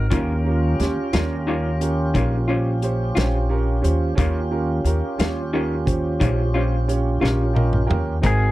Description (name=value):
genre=slow blues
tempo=59 BPM (dotted quarters)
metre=12/8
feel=straight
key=Eb mixolydian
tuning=A4 = 442 Hz
part: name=clean lap steel guitar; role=melody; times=0.0-1.8, 8.3-8.5 s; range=Ab4 to Bb4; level=-30 LUFS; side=left 2 dB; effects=none
part: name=warm concert grand piano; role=accompaniment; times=0.0-8.5 s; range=C4 to G5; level=-27 LUFS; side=right 4 dB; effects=none
part: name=tonewheel organ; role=sustained chords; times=0.0-8.5 s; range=C4 to Bb4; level=-28 LUFS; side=right 1 dB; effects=slow rotary speaker
part: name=upright bass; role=bass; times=0.0-8.5 s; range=Ab1 to Eb2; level=-21 LUFS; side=equal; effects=none
part: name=electric guitar through a small old amp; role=accompaniment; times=0.1-8.4 s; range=Eb3 to Bb4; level=-26 LUFS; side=left 3 dB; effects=tremolo
part: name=natural country drum kit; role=drums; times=0.1-8.4 s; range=hi-hat, kick drum, snare drum, toms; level=-24 LUFS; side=equal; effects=none
room=little or no reverb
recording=dry, close 1970s-style studio recording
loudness=-18 LUFS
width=side -16 dB against mid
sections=0.0-8.5 A section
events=drum fill 7.2-8.2; grand piano fill 7.2-8.2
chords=0.1 Eb9